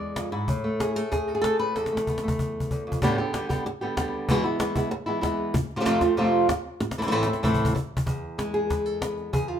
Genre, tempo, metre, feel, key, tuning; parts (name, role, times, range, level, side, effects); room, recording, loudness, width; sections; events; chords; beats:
flamenco; 190 BPM; 4/4; straight; E phrygian dominant; A4 = 440 Hz
flamenco guitar; melody; 0.0-9.6 s; E2 to D5; -24 LUFS; equal
cajon; percussion; 0.2-9.5 s; -29 LUFS; left 1 dB
moderate large studio reverb, RT60 0.9 s; band playing live in one room; -23 LUFS; side -9 dB against mid
0.0-3.0 A section; 3.0-8.1 B section; 8.1-9.6 C section
drum fill 1.7-3.0, 6.8-8.1
0.5 N.C.; 1.7 Esus4; 3.0 G; 4.3 E; 5.5 F; 6.8 Am; 8.1 E
0.16 | 0.48 0.80 1.11 1.43 | 1.75 2.07 2.38 2.70 | 3.02 3.33 3.65 3.97 | 4.28 4.60 4.91 5.23 | 5.54 5.86 6.18 6.49 | 6.81 7.12 7.44 7.75 | 8.07 8.39 8.70 9.02 | 9.34